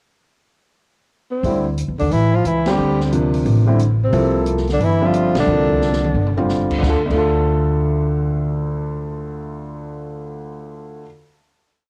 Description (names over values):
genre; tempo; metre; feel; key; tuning
modal jazz; 178 BPM; 4/4; swing 63% on 8ths; D minor; A4 = 441 Hz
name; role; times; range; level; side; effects
breathy tenor saxophone; melody; 1.3-6.5 s; C4 to G4; -23 LUFS; equal; none
warm grand piano; accompaniment; 1.4-11.1 s; D2 to E5; -23 LUFS; equal; cassette tape
upright bass; bass; 1.4-11.0 s; G1 to E2; -22 LUFS; equal; tube saturation
open jazz drum kit; drums; 1.4-7.2 s; crash cymbal, hi-hat, kick drum, ride cymbal, snare drum, toms; -31 LUFS; equal; cassette tape
mellow bass clarinet; second line; 2.0-6.5 s; C3 to G3; -24 LUFS; equal; cassette tape
room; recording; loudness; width
light reverb, studio reverb; home recording on cassette; -18 LUFS; mono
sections
0.1-1.4 pickup bar; 1.4-6.8 A section; 6.8-9.5 final chord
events
band accent 2.6, 5.3; drum fill 5.8-6.5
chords
0.1 N.C.; 1.4 D9sus4; 4.1 C9sus4; 6.8 Dm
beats
| 0.08 0.42 0.76 1.10 | 1.44 1.77 2.11 2.45 | 2.79 3.12 3.46 3.80 | 4.14 4.47 4.81 5.15 | 5.48 5.82 6.16 6.49 | 6.83 7.17 7.50 7.84 | 8.18 8.51 8.85 9.19